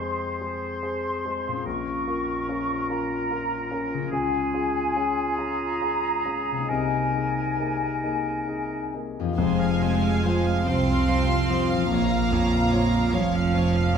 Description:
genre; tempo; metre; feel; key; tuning
cinematic, emotional film score for orchestra; 44-49 BPM (dotted quarters); 6/8; rubato; F minor; A4 = 440 Hz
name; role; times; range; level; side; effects
clear clarinet; second line; 0.0-9.0 s; Eb4 to Ab4; -35 LUFS; equal; none
clear oboe; second line; 0.0-9.0 s; Ab4 to C5; -33 LUFS; right 2 dB; none
large flute ensemble; second line; 0.0-8.9 s; Ab5 to Db6; -28 LUFS; left 1 dB; none
clear concert grand piano; accompaniment; 0.0-14.0 s; Bb1 to Db5; -29 LUFS; left 2 dB; none
concert harp; arpeggios; 0.0-14.0 s; F2 to C5; -31 LUFS; left 8 dB; none
warm symphonic violin section; melody; 9.4-14.0 s; F5; -32 LUFS; equal; none
warm symphonic violin section; second line; 9.4-14.0 s; F5 to C6; -32 LUFS; left 2 dB; none
rich chamber viola section; accompaniment; 9.4-14.0 s; F4 to F5; -31 LUFS; right 4 dB; none
warm symphonic cello section; bass; 9.4-14.0 s; F3 to C4; -25 LUFS; right 4 dB; none
warm symphonic double bass section; bass; 9.4-14.0 s; F1 to C2; -26 LUFS; right 4 dB; none
room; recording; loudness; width
moderate recital hall reverb, RT60 1.4 s; none; -22 LUFS; side -7 dB against mid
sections
0.0-9.4 A section; 9.4-14.0 A section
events
none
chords
0.0 Fm; 1.7 Bbm; 4.1 Db; 6.7 Abadd9/C; 9.4 Fm; 11.9 Bbm

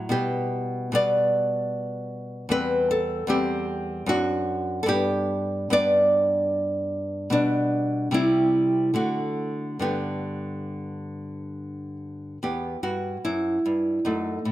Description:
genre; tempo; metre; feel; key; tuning
classical, baroque-style dance for nylon-string guitar; 68-77 BPM; 3/4; rubato; G major; A4 = 440 Hz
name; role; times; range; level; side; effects
nylon-string guitar; solo; 0.0-14.5 s; E2 to D5; -23 LUFS; equal; none
room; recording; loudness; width
light reverb; close, detailed microphones; -22 LUFS; side -14 dB against mid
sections
0.0-12.4 A section; 12.4-14.5 A section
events
none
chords
0.1 G/B; 2.5 C/E; 4.1 D7/F#; 4.9 G; 7.3 G/B; 8.1 C; 9.0 D; 9.8 G; 12.4 Em

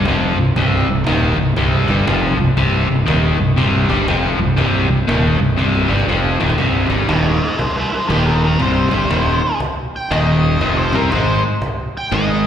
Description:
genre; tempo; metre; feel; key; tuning
blues rock power trio and southern rock; 119 BPM; 4/4; swing 63% on 8ths; unclear; A4 = 440 Hz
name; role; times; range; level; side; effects
distorted electric guitar; riff; 0.0-12.5 s; C2 to C4; -16 LUFS; equal; distortion, slapback echo
fuzz fingered electric bass; bass; 0.0-12.5 s; C1 to C2; -18 LUFS; equal; overdrive
cajon; drums; 0.1-12.3 s; none; -25 LUFS; equal; slapback echo
octave-fuzz lead guitar; melody; 7.1-12.5 s; E4 to G5; -20 LUFS; right 1 dB; wah, distortion, slapback echo
room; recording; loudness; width
light reverb, digital ambience; live gig heard through the venue's PA, recital hall reverb; -14 LUFS; side -9 dB against mid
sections
0.0-6.6 A section; 6.6-12.5 B section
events
drum fill 5.6-6.6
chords
0.0 C5; 10.6 F5

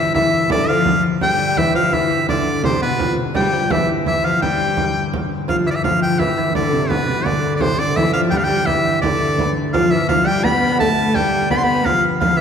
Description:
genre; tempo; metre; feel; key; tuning
medieval dance; 169 BPM; 3/4; straight; G mixolydian; A4 = 439 Hz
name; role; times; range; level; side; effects
edgy shawm; melody; 0.0-12.4 s; B4 to C6; -19 LUFS; equal; none
lute; second line; 0.0-12.4 s; B2 to B3; -23 LUFS; right 2 dB; none
rich viola da gamba; second line; 0.0-12.4 s; B2 to B3; -22 LUFS; left 3 dB; none
pipe organ, foundations; drone; 0.0-12.4 s; G2 to D3; -26 LUFS; left 3 dB; none
frame drum; percussion; 0.1-12.4 s; none; -24 LUFS; right 4 dB; none
room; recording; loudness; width
wet church reverb, RT60 2.4 s; recorded in a church or concert hall; -15 LUFS; side -7 dB against mid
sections
0.0-5.5 A section; 5.5-12.4 B section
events
none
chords
none

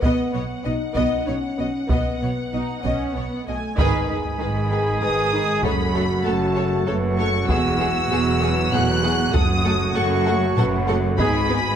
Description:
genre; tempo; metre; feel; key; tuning
cinematic, epic orchestral film score; 97 BPM; 3/4; straight; F# dorian; A4 = 440 Hz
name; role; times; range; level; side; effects
rich symphonic violin section; melody; 0.0-11.8 s; F#5 to F#6; -28 LUFS; left 1 dB; none
warm symphonic violin section; second line; 0.0-11.6 s; G#4 to F#5; -30 LUFS; left 3 dB; none
dark symphonic viola section; accompaniment; 0.0-11.6 s; D#3 to F#4; -29 LUFS; right 2 dB; none
mellow French horn section; sustained chords; 0.0-11.8 s; A3 to B4; -28 LUFS; left 4 dB; none
dark symphonic double bass section; bass; 0.0-11.7 s; E1 to B1; -27 LUFS; right 2 dB; none
rich symphonic cello section; bass; 0.0-11.7 s; E2 to B2; -27 LUFS; right 2 dB; none
taiko ensemble; drums; 0.0-11.8 s; none; -25 LUFS; equal; none
mellow trombone section; sustained chords; 3.8-11.4 s; B2 to A3; -30 LUFS; right 2 dB; none
warm woodwind section; sustained chords; 3.8-11.8 s; A3 to G#5; -31 LUFS; left 1 dB; none
warm trumpet; stabs; 3.8-11.4 s; F#4 to G#4; -26 LUFS; right 1 dB; none
sub drop; sound effects; 4.1-5.6 s; none; -35 LUFS; left 1 dB; none
timpani; percussion; 9.3-10.2 s; F#2; -29 LUFS; left 1 dB; none
room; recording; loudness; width
moderate scoring stage reverb, RT60 1.8 s; none; -19 LUFS; side -8 dB against mid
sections
0.0-3.8 A section; 3.8-11.8 B section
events
band accent 3.8-4.4; impact 3.8-5.6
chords
0.0 B; 3.8 G#m; 5.6 F#m; 7.5 Eadd9; 9.3 F#m; 11.2 G#m

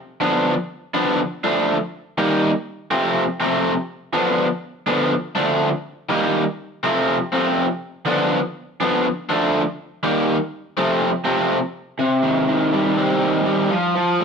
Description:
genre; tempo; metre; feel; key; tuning
rock; 122 BPM; 4/4; straight; unclear; A4 = 443 Hz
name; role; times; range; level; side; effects
raw garage guitar; solo; 0.2-14.2 s; C3 to Eb4; -18 LUFS; equal; overdrive
room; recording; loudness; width
moderate studio reverb, RT60 0.9 s; none; -18 LUFS; side -6 dB against mid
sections
0.0-12.0 A section; 12.0-14.2 B section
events
none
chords
0.2 Dm6; 1.2 Dm; 2.2 Eb; 2.9 F; 4.1 Dm6; 5.1 Dm; 6.1 Eb; 6.8 F; 8.1 Dm6; 9.1 Dm; 10.0 Eb; 10.8 F; 12.0 Cm; 13.7 N.C.

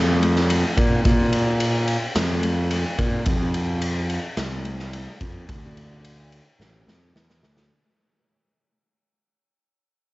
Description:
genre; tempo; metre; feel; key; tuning
rock, shoegaze and dream pop; 108 BPM; 4/4; straight; F major; A4 = 440 Hz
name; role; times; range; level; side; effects
fuzz picked electric bass; bass; 0.0-7.7 s; A1 to Bb2; -22 LUFS; equal; overdrive
raw garage drum kit; drums; 0.2-7.7 s; kick drum, ride cymbal, snare drum; -24 LUFS; equal; none
room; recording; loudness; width
little or no reverb; home recording on cassette, nothing above 7.8 kHz; -19 LUFS; side -20 dB against mid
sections
0.0-7.7 A section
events
fade-out 0.0-7.7; drum fill 6.6-7.7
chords
none

